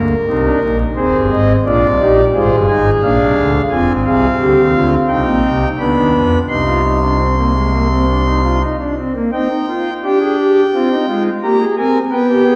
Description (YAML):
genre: classical, baroque-style 4-part fugue for pipe organ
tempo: 86 BPM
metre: 4/4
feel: straight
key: C minor from 3.7 s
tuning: A4 = 436 Hz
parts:
  - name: pipe organ, foundations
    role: solo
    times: 0.0-12.6 s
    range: Eb1 to C6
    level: -14 LUFS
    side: equal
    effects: none
room: wet scoring stage reverb, RT60 2.1 s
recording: heard from further back in the room, vinyl crackle, nothing above 10.4 kHz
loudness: -14 LUFS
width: mono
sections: 0.0-9.3 A section; 9.3-12.6 B section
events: none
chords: 0.0 Eb5; 1.0 Ab/Eb; 2.3 Fm; 3.7 Dm7b5/F; 5.1 Cm; 5.8 Dm6; 6.5 Cm; 10.7 Abmaj13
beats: 0.27 | 0.97 1.66 2.35 3.04 | 3.72 4.40 5.09 5.79 | 6.49 7.20 7.90 8.61 | 9.33 10.04 10.73 11.43 | 12.12